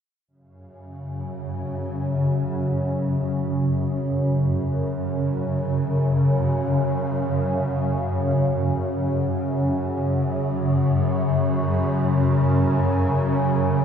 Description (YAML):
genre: ambient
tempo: free time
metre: none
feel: none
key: unclear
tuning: A4 = 440 Hz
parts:
  - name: swarming drone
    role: solo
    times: 0.9-13.8 s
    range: F#2 to C#3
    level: -20 LUFS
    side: equal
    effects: built-in reverb, diffuse ambient delay
room: wet huge ambient reverb, RT60 7.8 s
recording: dark, warm production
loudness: -20 LUFS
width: side -8 dB against mid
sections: 0.3-13.8 A section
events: none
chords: 0.3 F#5